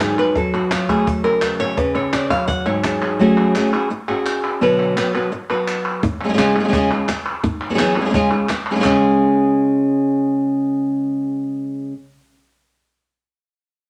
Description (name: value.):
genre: flamenco.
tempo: 170 BPM.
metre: 4/4.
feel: straight.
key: C# phrygian dominant.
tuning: A4 = 436 Hz.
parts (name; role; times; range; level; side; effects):
flamenco guitar; melody; 0.0-11.9 s; G#2 to F#5; -19 LUFS; equal; none.
cajon; percussion; 0.0-3.0, 6.0-8.9 s; none; -29 LUFS; equal; none.
palmas hand claps; percussion; 0.0-8.9 s; none; -27 LUFS; equal; none.
room: moderate studio reverb, RT60 0.9 s.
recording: none.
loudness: -18 LUFS.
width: mono.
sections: 0.0-3.2 A section; 3.2-8.8 B section; 8.8-11.6 C section.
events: nylon-string guitar solo 0.0-3.2.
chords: 0.4 F#m; 1.8 C#sus4; 3.2 F#madd9; 4.6 Bm; 6.0 C#; 7.4 Eadd9; 8.1 C#.